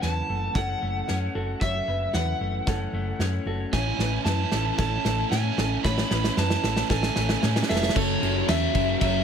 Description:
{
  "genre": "post-rock",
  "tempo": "114 BPM",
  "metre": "4/4",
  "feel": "straight",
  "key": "F# minor",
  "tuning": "A4 = 441 Hz",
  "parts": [
    { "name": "overdriven slide guitar", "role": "melody", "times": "0.0-9.2 s", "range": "C#5 to B5", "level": "-29 LUFS", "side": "right 1 dB", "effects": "analog delay" },
    { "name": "electric guitar through a small old amp", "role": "arpeggios", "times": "0.0-8.0 s", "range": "F#2 to G#4", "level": "-34 LUFS", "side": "left 5 dB", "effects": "analog delay" },
    { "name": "felt-muted upright piano", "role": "arpeggios", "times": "0.0-9.2 s", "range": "A4 to E5", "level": "-37 LUFS", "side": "right 3 dB", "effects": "analog delay" },
    { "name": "hollow-body short-scale fingered electric bass", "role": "bass", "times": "0.0-9.2 s", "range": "E#1 to A2", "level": "-28 LUFS", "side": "equal", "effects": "none" },
    { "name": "loose indie drum kit", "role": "drums", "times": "0.0-9.1 s", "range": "crash cymbal, kick drum, snare drum", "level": "-27 LUFS", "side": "right 1 dB", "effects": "none" },
    { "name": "sludgy distorted guitar", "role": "riff", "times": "3.7-9.2 s", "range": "F#2 to E4", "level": "-30 LUFS", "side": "right 13 dB", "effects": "overdrive" },
    { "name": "overdriven electric guitar", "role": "riff", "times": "8.0-9.2 s", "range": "F#2 to F#3", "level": "-27 LUFS", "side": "left 14 dB", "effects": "none" }
  ],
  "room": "small room ambience",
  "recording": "none",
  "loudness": "-22 LUFS",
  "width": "side -7 dB against mid",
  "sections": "0.0-8.0 A section; 8.0-9.2 B section",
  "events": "build-up 0.0-8.0; drum fill 0.0-8.0",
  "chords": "0.0 F#m7; 3.7 Amaj7; 8.0 F#m7",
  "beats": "0.03 0.56 1.09 | 1.62 2.15 2.68 3.21 | 3.73 4.26 4.79 5.32 | 5.85 6.38 6.90 7.43 | 7.96 8.48 9.01"
}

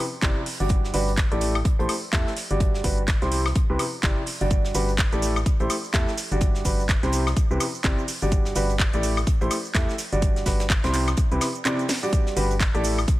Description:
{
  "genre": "piano house",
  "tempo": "126 BPM",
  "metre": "4/4",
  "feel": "swing 59% on 16ths",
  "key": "G major",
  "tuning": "A4 = 440 Hz",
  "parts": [
    { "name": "clear baby grand piano", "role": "riff", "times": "0.2-13.0 s", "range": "C3 to E5", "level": "-26 LUFS", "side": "equal", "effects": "sidechain pumping, low-pass filter, dub echo" },
    { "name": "organ-like FM bass", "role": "bass", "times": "0.2-13.1 s", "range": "G1 to E2", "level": "-26 LUFS", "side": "equal", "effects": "sidechain pumping" },
    { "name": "electronic kick drum", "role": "drums", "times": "0.2-13.2 s", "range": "none", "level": "-22 LUFS", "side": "equal", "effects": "none" },
    { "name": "house drum kit", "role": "drums", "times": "0.2-13.2 s", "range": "handclaps, hi-hat, shaker, snare drum, woodblock", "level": "-28 LUFS", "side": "equal", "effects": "none" },
    { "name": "tight metal drum kit", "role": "drums", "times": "0.2-13.2 s", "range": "hi-hat, snare drum", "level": "-39 LUFS", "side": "right 2 dB", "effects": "none" }
  ],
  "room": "little or no reverb",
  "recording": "none",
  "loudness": "-21 LUFS",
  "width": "side -17 dB against mid",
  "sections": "0.0-13.2 A section",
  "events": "drum fill 11.9",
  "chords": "0.0 Gmaj7(no3); 1.4 A7(no3); 2.6 Gmaj7; 5.2 A7(no3); 6.4 Gmaj7; 9.0 A7(no3); 10.2 Gmaj7; 10.9 C; 12.1 Gmaj7",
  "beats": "0.22 | 0.70 1.18 1.65 2.13 | 2.60 3.08 3.56 4.03 | 4.51 4.99 5.46 5.94 | 6.41 6.89 7.37 7.84 | 8.32 8.79 9.27 9.75 | 10.22 10.70 11.18 11.65 | 12.13 12.60 13.08"
}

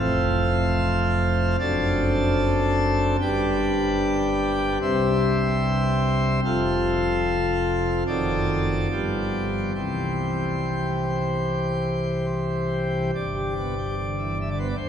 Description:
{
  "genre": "classical, chorale-style piece for pipe organ",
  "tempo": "72 BPM",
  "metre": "4/4",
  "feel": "uneven beats",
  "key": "C major",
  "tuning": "A4 = 440 Hz",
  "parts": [
    { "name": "pipe organ, plenum", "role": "solo", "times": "0.0-14.9 s", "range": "D1 to A5", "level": "-21 LUFS", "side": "equal", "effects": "none" }
  ],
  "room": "wet cathedral reverb, RT60 5.6 s",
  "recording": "heard from further back in the room",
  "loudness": "-21 LUFS",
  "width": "side -8 dB against mid",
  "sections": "0.0-13.1 A section; 13.1-14.9 B section",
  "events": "none",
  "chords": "0.0 F; 1.6 D7/F#; 3.2 G; 4.8 C; 6.4 F; 8.1 F#dim7; 8.9 G7; 9.7 C; 13.1 G",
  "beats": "0.79 1.60 2.42 | 3.21 4.01 4.82 5.63 | 6.44 7.25 8.07 8.90 | 9.74 10.60 11.45 12.30 | 13.14 13.96 14.78"
}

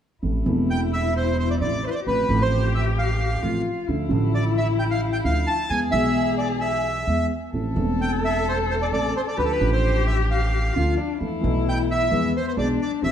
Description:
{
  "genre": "tango",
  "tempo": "132 BPM",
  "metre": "4/4",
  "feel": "rubato",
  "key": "A minor",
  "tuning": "A4 = 440 Hz",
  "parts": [
    { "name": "dark cello", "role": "second line", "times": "0.2-13.1 s", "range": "B3 to A4", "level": "-28 LUFS", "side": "left 6 dB", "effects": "none" },
    { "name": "dark concert grand piano", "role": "accompaniment", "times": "0.2-13.1 s", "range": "E1 to A4", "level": "-25 LUFS", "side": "right 1 dB", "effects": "none" },
    { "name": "upright bass", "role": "bass", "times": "0.2-13.1 s", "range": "E1 to E2", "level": "-25 LUFS", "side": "right 1 dB", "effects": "none" },
    { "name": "bandoneon", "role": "melody", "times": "0.7-13.1 s", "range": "A4 to A5", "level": "-25 LUFS", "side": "right 1 dB", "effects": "tape echo" }
  ],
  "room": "wet large studio reverb, RT60 1.1 s",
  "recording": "heard from further back in the room",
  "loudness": "-20 LUFS",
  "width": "side -9 dB against mid",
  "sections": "0.2-13.1 A section",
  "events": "none",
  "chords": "0.2 Am; 2.1 F/A; 3.9 Dmadd9; 5.7 E; 7.5 Am; 9.4 Dm; 11.2 Esus4; 12.1 E",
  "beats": "| 0.23 0.69 1.15 1.61 | 2.06 2.52 2.97 3.43 | 3.88 4.33 4.79 5.24 | 5.70 6.16 6.61 7.08 | 7.54 8.00 8.46 8.92 | 9.38 9.83 10.29 10.75 | 11.21 11.66 12.12 12.57 | 13.03"
}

